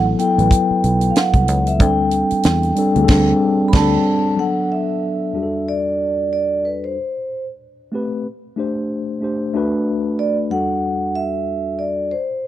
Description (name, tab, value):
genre	lush 1970s-style soul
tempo	93 BPM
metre	4/4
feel	swing 58% on 16ths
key	E minor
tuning	A4 = 440 Hz
part	mellow tine electric piano	accompaniment	0.0-12.1 s	E2 to C5	-19 LUFS	left 1 dB	slow stereo tremolo
part	fingered electric bass	bass	0.0-4.0 s	A1 to E2	-19 LUFS	equal	none
part	vibraphone with soft mallets	melody	0.2-12.5 s	B4 to B5	-20 LUFS	moving between left 4 dB and right 7 dB	auto-pan
part	tight funk drum kit	drums	0.2-4.0 s	crash cymbal, hi-hat, kick drum, snare drum	-17 LUFS	right 1 dB	none
room	light reverb, studio reverb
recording	dry, close 1970s-style studio recording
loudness	-16 LUFS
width	side -13 dB against mid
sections	0.0-4.4 A section; 4.4-12.5 B section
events	band accent 3.1-4.4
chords	0.0 B7sus4; 1.8 D7sus4; 4.4 Bm7; 5.3 Em11; 7.0 Am9; 8.3 D7sus4; 9.5 Bm7; 10.5 Em11